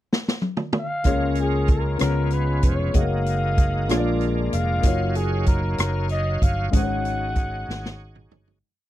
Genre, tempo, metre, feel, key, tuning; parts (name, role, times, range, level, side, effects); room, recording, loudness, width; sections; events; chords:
slow gospel; 63 BPM (dotted quarters); 6/8; straight; Db major; A4 = 440 Hz
swinging big-band drum kit; drums; 0.1-8.6 s; hi-hat, kick drum, rim click, snare drum, toms; -22 LUFS; equal
growling trumpet; melody; 0.8-8.3 s; Ab4 to Gb5; -28 LUFS; left 1 dB
warm baby grand piano; accompaniment; 1.0-8.6 s; Ab2 to D5; -27 LUFS; left 4 dB
bright tonewheel organ; sustained chords; 1.1-8.6 s; Gb3 to F5; -30 LUFS; right 2 dB; slow rotary speaker, overdrive, chorus vibrato
fingered electric bass; bass; 1.1-8.6 s; F1 to Db2; -24 LUFS; equal
little or no reverb; dry, close 1970s-style studio recording; -20 LUFS; side -14 dB against mid
0.0-1.1 pickup bar; 1.1-8.6 verse
drum fill 0.1-1.1, 7.7-8.6; fade-out 6.7-8.6
0.0 N.C.; 1.1 Db6; 2.0 Db7; 2.9 Gb69; 3.9 Bb7; 4.8 Ebm9/Gb; 6.7 Ab7sus4